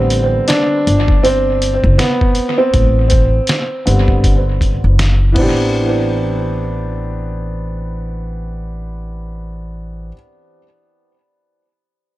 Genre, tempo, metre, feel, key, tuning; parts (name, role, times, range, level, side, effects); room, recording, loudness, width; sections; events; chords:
hip hop, jazz-hop; 80 BPM; 4/4; swing 59% on 16ths; A dorian; A4 = 440 Hz
warm upright piano; accompaniment; 0.0-10.2 s; D3 to G4; -16 LUFS; right 1 dB; analog delay
upright bass; bass; 0.0-10.1 s; F#1 to A1; -16 LUFS; equal
trip hop sampler-style drum kit; drums; 0.1-5.6 s; crash cymbal, hi-hat, kick drum, snare drum; -17 LUFS; equal; analog delay
light reverb, small room ambience; echo-heavy mix; -12 LUFS; side -16 dB against mid
0.0-5.7 A section; 5.7-8.7 B section
upright piano solo 0.0-5.7
0.0 Am11